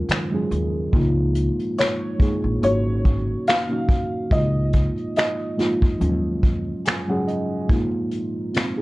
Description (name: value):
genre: lo-fi hip hop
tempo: 71 BPM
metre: 4/4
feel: swing 56% on 16ths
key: Db major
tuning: A4 = 442 Hz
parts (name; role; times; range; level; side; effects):
- muted felt-like synth keys; accompaniment; 0.0-8.8 s; F3 to Ab5; -24 LUFS; right 1 dB; chorus, cassette tape
- upright bass; bass; 0.1-6.7 s; Ab1 to Eb3; -23 LUFS; equal; none
- vintage brush drum kit; drums; 0.1-8.8 s; finger snaps, hi-hat, kick drum, snare drum; -22 LUFS; equal; none
- felt-muted upright piano; melody; 1.8-7.2 s; Db5 to F5; -25 LUFS; left 1 dB; none
room: light reverb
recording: cassette tape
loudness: -19 LUFS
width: side -20 dB against mid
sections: 0.0-8.8 A section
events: break 0.0-0.9; synth keys fill 6.4-7.7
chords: 0.0 Ebm11; 0.9 Db69; 2.6 Ab9sus4; 4.3 Db69; 6.0 Ebm11; 7.7 Ab69